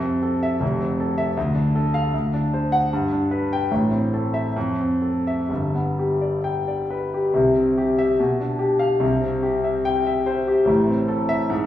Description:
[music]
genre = classical, romantic character piece for solo piano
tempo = 62-82 BPM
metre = 2/4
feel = rubato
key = C major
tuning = A4 = 439 Hz
[part]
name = warm concert grand piano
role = solo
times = 0.0-11.7 s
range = F1 to G5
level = -19 LUFS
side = left 1 dB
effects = none
[sound]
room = wet recital hall reverb, RT60 1.3 s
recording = heard from further back in the room, small room reverb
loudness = -19 LUFS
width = side -12 dB against mid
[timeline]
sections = 0.0-7.4 A section; 7.4-11.7 B section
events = none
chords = 0.0 Fmaj7; 1.4 Dm; 2.1 D7; 2.9 G; 3.7 Am; 4.6 Fmaj7; 5.5 G; 7.4 C; 8.2 G7/B; 9.0 C; 10.7 Am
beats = | 0.62 1.36 | 2.13 2.90 | 3.70 4.55 | 5.49 6.44 | 7.35 8.19 | 9.02 9.85 | 10.69 11.51

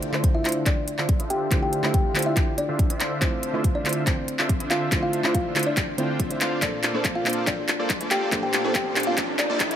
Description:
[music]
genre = future bass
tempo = 141 BPM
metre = 4/4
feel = half-time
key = D minor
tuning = A4 = 439 Hz
[part]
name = soft round pluck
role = accompaniment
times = 0.0-9.8 s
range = Bb2 to C5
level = -30 LUFS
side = right 2 dB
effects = chorus, sidechain pumping
[part]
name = supersaw chords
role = riff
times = 0.0-9.8 s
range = D3 to G5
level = -29 LUFS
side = equal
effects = vintage 12-bit sampler grit, sidechain pumping, low-pass filter
[part]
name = trap drum kit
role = drums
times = 0.0-9.8 s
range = handclaps, hi-hat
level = -26 LUFS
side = equal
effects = none
[part]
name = electronic kick drum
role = drums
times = 0.2-9.7 s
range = none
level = -24 LUFS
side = equal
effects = none
[part]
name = kalimba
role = melody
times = 0.3-9.8 s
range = C4 to G5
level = -28 LUFS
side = left 1 dB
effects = sidechain pumping, ping-pong delay
[part]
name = riser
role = sound effects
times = 7.4-9.8 s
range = none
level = -32 LUFS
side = right 1 dB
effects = none
[sound]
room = light reverb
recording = high-pass filter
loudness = -21 LUFS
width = side -10 dB against mid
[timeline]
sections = 0.0-9.8 A section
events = build-up 0.0-9.8; drum fill 0.0-9.8; filter sweep on supersaw synth 0.0-9.8; filter sweep 0.0-9.8; riser 7.4-9.8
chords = 0.0 Dm9; 6.6 Bbmaj7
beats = 0.24 0.66 1.09 | 1.51 1.94 2.37 2.79 | 3.22 3.64 4.07 4.49 | 4.92 5.34 5.77 6.20 | 6.62 7.05 7.47 7.90 | 8.32 8.75 9.18 9.60

